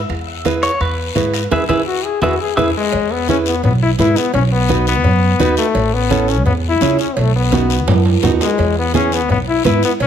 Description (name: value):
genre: latin, cumbia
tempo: 170 BPM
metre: 4/4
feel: straight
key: E major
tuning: A4 = 440 Hz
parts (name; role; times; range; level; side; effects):
- upright bass; bass; 0.0-10.1 s; A1 to G#2; -18 LUFS; right 1 dB; none
- congas; percussion; 0.1-10.1 s; none; -22 LUFS; left 3 dB; none
- guiro; percussion; 0.1-10.1 s; none; -28 LUFS; left 10 dB; none
- timbales and cowbell; percussion; 0.1-10.1 s; none; -24 LUFS; right 6 dB; none
- nylon-string guitar; accompaniment; 0.5-9.9 s; B3 to B4; -19 LUFS; right 5 dB; none
- clean electric guitar; melody; 0.6-2.7 s; G#4 to E5; -21 LUFS; equal; spring reverb, tape echo
- bright trombone; second line; 1.9-10.1 s; G#3 to G#4; -17 LUFS; left 5 dB; none
room: moderate large studio reverb, RT60 1.2 s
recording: none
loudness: -13 LUFS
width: side -9 dB against mid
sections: 0.0-2.9 A section; 2.9-10.1 B section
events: band accent 1.5-2.9; drum fill 2.4-2.9, 7.5-8.6; trombone solo 2.9-10.1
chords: 0.0 E; 4.3 B; 5.8 A; 7.2 B; 8.6 E